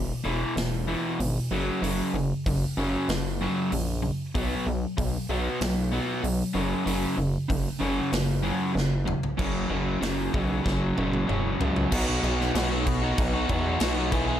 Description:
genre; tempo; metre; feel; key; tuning
quiet-loud alternative rock; 95 BPM; 4/4; straight; unclear; A4 = 441 Hz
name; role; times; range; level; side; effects
crunchy overdriven guitar; riff; 0.0-14.4 s; E2 to G#4; -26 LUFS; equal; none
gritty driven synth bass; bass; 0.0-14.4 s; E1 to E2; -29 LUFS; equal; none
big rock drum kit; drums; 0.6-14.3 s; crash cymbal, hi-hat, kick drum, snare drum, toms; -32 LUFS; equal; none
room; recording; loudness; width
light reverb; none; -24 LUFS; side -10 dB against mid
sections
0.0-9.4 A section; 9.4-11.9 B section; 11.9-14.4 C section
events
half time 0.0-9.4; drum fill 8.8-9.4, 10.7-11.9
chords
0.0 E; 1.5 F#; 4.3 B5; 6.6 F#5; 11.9 B

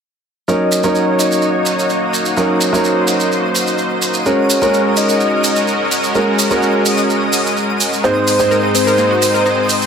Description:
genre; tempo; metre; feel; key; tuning
progressive house; 127 BPM; 4/4; straight; Eb dorian; A4 = 435 Hz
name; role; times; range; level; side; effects
soft octave-layered synth lead; melody; 0.5-9.6 s; C5 to Eb5; -18 LUFS; left 2 dB; chorus, ping-pong delay
supersaw pad; sustained chords; 0.5-9.9 s; Ab3 to Db5; -18 LUFS; equal; low-pass filter
warm grand piano; stabs; 0.5-9.9 s; Ab2 to C5; -16 LUFS; right 2 dB; ping-pong delay
maracas; percussion; 0.5-9.9 s; none; -21 LUFS; right 4 dB; none
twinkling granular texture; texture; 1.0-9.9 s; Eb5 to Eb6; -25 LUFS; left 1 dB; built-in reverb
electronic hi-hat; drums; 0.7-9.8 s; none; -25 LUFS; left 3 dB; low-pass filter on hats, low-pass filter on room
analog pluck; arpeggios; 8.0-9.5 s; Bb3 to Eb5; -21 LUFS; left 3 dB; chorus, ping-pong delay
room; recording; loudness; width
moderate lush hall reverb, RT60 2.3 s; none; -12 LUFS; side -6 dB against mid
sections
0.5-9.9 A section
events
filter sweep on supersaw synth 0.5-9.9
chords
0.5 Ebm7; 4.3 Gbadd9; 8.0 Ab

